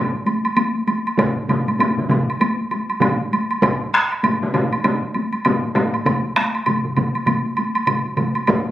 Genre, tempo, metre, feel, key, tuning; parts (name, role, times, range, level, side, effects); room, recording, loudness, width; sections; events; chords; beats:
japanese traditional, taiko drum ensemble; 98 BPM; 4/4; swing 60% on 16ths
taiko ensemble; percussion; 0.1-8.7 s; -22 LUFS; equal
woodblock; percussion; 0.3-8.7 s; -22 LUFS; right 2 dB
taiko ensemble; percussion; 1.2-8.7 s; -21 LUFS; left 1 dB
taiko ensemble; percussion; 1.2-8.3 s; -23 LUFS; right 1 dB
taiko ensemble; percussion; 1.2-8.7 s; -24 LUFS; right 2 dB
wet studio reverb, RT60 0.8 s; recorded on a phone in the room, studio reverb; -17 LUFS; side -13 dB against mid
0.0-8.7 A section
0.57 | 1.19 1.80 2.41 3.02 | 3.63 4.24 4.85 5.46 | 6.07 6.67 7.28 7.89 | 8.49